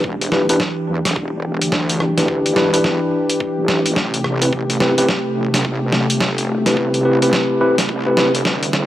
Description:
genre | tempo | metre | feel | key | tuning
glitch hop | 107 BPM | 4/4 | swing 62% on 16ths | unclear | A4 = 441 Hz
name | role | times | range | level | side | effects
warm analog pad | sustained chords | 0.0-8.9 s | C3 to G4 | -22 LUFS | equal | chorus, vintage 12-bit sampler grit, sidechain pumping
wobble bass | bass | 0.0-8.9 s | E1 to E2 | -24 LUFS | equal | chorus, overdrive, high-pass filter
electronic kick drum | drums | 0.0-8.6 s | none | -28 LUFS | equal | none
boom bap sampler-style drum kit | drums | 0.2-8.9 s | hi-hat, rim click, snare drum | -20 LUFS | equal | none
tine electric piano | stabs | 0.3-8.3 s | C4 to B4 | -18 LUFS | left 1 dB | sidechain pumping, tape echo
room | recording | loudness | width
light reverb | dry, gritty hardware recording, high-pass filter | -15 LUFS | side -13 dB against mid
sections
0.0-8.9 A section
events
build-up 0.0-8.9; drum fill 0.0-8.9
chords
0.0 Em7; 4.0 Am7

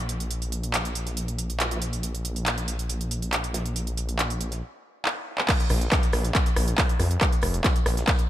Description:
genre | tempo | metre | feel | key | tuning
driving peak-time techno | 139 BPM | 4/4 | straight | unclear | A4 = 439 Hz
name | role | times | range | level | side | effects
detuned saw bass | bass | 0.0-8.0 s | F1 to F2 | -27 LUFS | equal | sidechain pumping
modern studio drum kit | drums | 0.1-8.3 s | hi-hat, snare drum | -40 LUFS | right 2 dB | none
techno drum kit | drums | 0.1-8.3 s | crash cymbal, handclaps, hi-hat, rim click | -27 LUFS | right 1 dB | sidechain pumping on hats, sidechain pumping on cymbals
electronic kick drum | drums | 5.5-8.2 s | none | -23 LUFS | equal | none
room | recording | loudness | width
light reverb | bright 1980s-style digital production | -23 LUFS | side -13 dB against mid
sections
0.0-5.5 A section; 5.5-8.3 B section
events
drum fill 5.1-5.5; drop 5.5-8.3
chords
none

